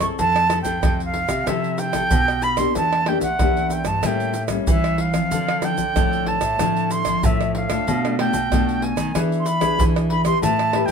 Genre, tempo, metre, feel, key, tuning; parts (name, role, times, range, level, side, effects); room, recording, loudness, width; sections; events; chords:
samba and choro; 94 BPM; 4/4; straight; A4 = 440 Hz
silver concert flute; melody; 0.0-10.9 s; E5 to C#6; -22 LUFS; right 2 dB
nylon-string guitar; accompaniment; 0.0-10.9 s; A2 to B4; -24 LUFS; left 5 dB
nylon-string guitar; bass; 0.0-10.9 s; E2 to E3; -25 LUFS; right 1 dB
egg shaker, surdo, pandeiro and tamborim; percussion; 0.0-10.9 s; -24 LUFS; right 1 dB
moderate studio reverb, RT60 0.6 s; minimal, uncompressed stereo recording; -18 LUFS; side -6 dB against mid
0.0-10.9 A section
0.2 Fmaj7; 2.8 Em7b5; 4.0 A7b9; 5.3 Dm9; 7.9 Bm7b5; 9.2 E7